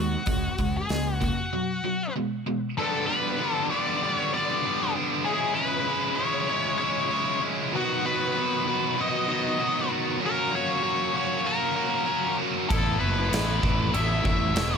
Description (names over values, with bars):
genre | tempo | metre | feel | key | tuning
classic rock | 97 BPM | 4/4 | straight | unclear | A4 = 440 Hz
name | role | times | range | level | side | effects
octave-fuzz lead guitar | melody | 0.0-14.8 s | F#4 to E5 | -28 LUFS | left 3 dB | wah, distortion
biting overdriven guitar | riff | 0.0-14.8 s | G2 to A4 | -26 LUFS | right 1 dB | none
fuzz fingered electric bass | bass | 0.0-1.3, 12.7-14.8 s | E1 to D#2 | -28 LUFS | equal | overdrive
big rock drum kit | drums | 0.3-1.4, 12.7-14.7 s | crash cymbal, hi-hat, kick drum, snare drum | -28 LUFS | equal | none
room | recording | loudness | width
little or no reverb | none | -23 LUFS | side -6 dB against mid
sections
0.0-2.8 A section; 2.8-14.8 B section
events
break 1.5-2.8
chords
0.3 C#5; 1.5 B5; 2.8 G; 5.3 C#m; 7.7 B; 10.2 F#; 12.7 Asus2